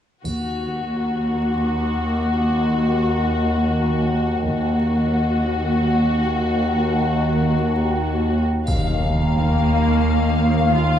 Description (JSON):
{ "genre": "cinematic, suspense film score", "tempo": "free time", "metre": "none", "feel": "none", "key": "Eb minor", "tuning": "A4 = 439 Hz", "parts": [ { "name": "warm symphonic violin section", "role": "melody", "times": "0.2-11.0 s", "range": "Gb4 to F5", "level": "-24 LUFS", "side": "left 5 dB", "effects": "none" }, { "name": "overtone-sweeping drone", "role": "drone", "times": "1.1-11.0 s", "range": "Eb2", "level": "-24 LUFS", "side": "equal", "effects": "chorus, built-in reverb, phaser" }, { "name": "rich symphonic cello section", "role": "bass", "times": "0.3-11.0 s", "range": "Eb2", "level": "-21 LUFS", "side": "equal", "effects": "none" }, { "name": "rich symphonic double bass section", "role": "bass", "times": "0.3-11.0 s", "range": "Eb2", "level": "-24 LUFS", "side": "right 1 dB", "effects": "none" }, { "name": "triangle", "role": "percussion", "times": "0.3-2.3, 8.7-10.7 s", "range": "none", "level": "-38 LUFS", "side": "right 2 dB", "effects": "none" }, { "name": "impact", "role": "sound effects", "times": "8.7-11.0 s", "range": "none", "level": "-26 LUFS", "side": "equal", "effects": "none" }, { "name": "rich symphonic viola section", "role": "accompaniment", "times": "9.2-11.0 s", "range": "Bb3 to F4", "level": "-22 LUFS", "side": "right 2 dB", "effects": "none" } ], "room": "moderate scoring stage reverb, RT60 1.9 s", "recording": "dark, warm production, vinyl crackle, lossy compression artefacts", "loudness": "-18 LUFS", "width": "side -9 dB against mid", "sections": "0.3-8.7 A section; 8.7-11.0 B section", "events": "impact 8.7-11.0", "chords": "0.3 Ebm; 8.7 Ebsus2" }